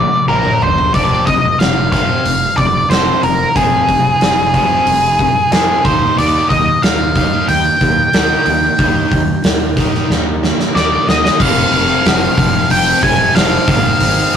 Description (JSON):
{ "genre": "classic rock", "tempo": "92 BPM", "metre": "4/4", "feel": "straight", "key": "F dorian", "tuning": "A4 = 439 Hz", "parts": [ { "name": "octave-fuzz lead guitar", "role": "melody", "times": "0.0-14.4 s", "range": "Ab4 to Ab5", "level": "-14 LUFS", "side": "equal", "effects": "distortion" }, { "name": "distorted electric guitar", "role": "riff", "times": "0.0-14.4 s", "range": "F2 to Eb4", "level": "-19 LUFS", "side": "left 1 dB", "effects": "overdrive" }, { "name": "fuzz fingered electric bass", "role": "bass", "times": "0.0-14.4 s", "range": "F1 to F2", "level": "-20 LUFS", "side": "equal", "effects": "overdrive" }, { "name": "big rock drum kit", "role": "drums", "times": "0.3-14.4 s", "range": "crash cymbal, hi-hat, kick drum, snare drum, toms", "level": "-15 LUFS", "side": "equal", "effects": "none" } ], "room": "light reverb", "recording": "rough rehearsal-room recording, tube saturation", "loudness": "-10 LUFS", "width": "side -8 dB against mid", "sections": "0.0-11.4 A section; 11.4-14.4 B section", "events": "drum fill 0.0-0.9, 10.1-11.4", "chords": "0.0 Bb; 0.9 Fm; 5.8 Eb; 11.4 F5; 13.7 Ab5" }